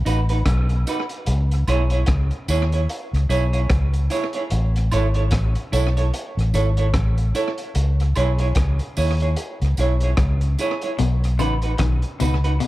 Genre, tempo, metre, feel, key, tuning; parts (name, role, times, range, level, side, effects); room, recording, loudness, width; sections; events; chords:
roots reggae; 74 BPM; 4/4; swing 59% on 16ths; C# minor; A4 = 440 Hz
vintage muted fingered electric bass; bass; 0.0-12.6 s; G#1 to D#2; -19 LUFS; equal
semi-hollow electric guitar; accompaniment; 0.1-12.5 s; D#4 to C#5; -26 LUFS; right 3 dB; dub echo
crunchy breakbeat drum kit; drums; 0.1-12.7 s; hi-hat, kick drum, rim click; -26 LUFS; equal; tape echo
tambourine and woodblock; percussion; 0.1-12.4 s; -36 LUFS; right 4 dB
semi-hollow electric guitar; arpeggios; 11.0-12.7 s; B2 to D#3; -27 LUFS; left 8 dB
small room ambience; echo-heavy mix; -18 LUFS; side -17 dB against mid
0.0-12.7 A section
0.0 B; 1.3 C#m; 4.5 A; 7.8 C#m; 11.0 B